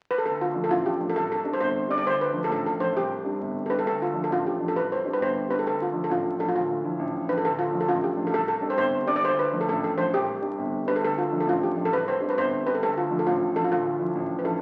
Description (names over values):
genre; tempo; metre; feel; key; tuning
celtic folk, Celtic polka; 134 BPM; 2/4; swing 65% on 8ths; D dorian; A4 = 444 Hz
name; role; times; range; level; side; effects
steel pan; melody; 0.1-14.6 s; E4 to D5; -27 LUFS; equal; none
warm concert grand piano; accompaniment; 0.3-14.6 s; G1 to E4; -32 LUFS; equal; none
room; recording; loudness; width
wet large studio reverb, RT60 1.2 s; very old 78 rpm record, vinyl crackle; -26 LUFS; mono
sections
0.3-7.4 A section; 7.4-14.6 A section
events
none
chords
0.3 Dm; 1.2 Csus2; 2.1 Dm; 3.0 Csus2; 3.9 Dm; 4.8 Csus2; 5.6 Dm; 6.5 Dmadd9; 7.4 Dm; 8.3 Csus2; 9.2 Dm; 10.1 Csus2; 11.0 Dm; 11.9 Csus2; 12.8 Dm; 13.7 Dmadd9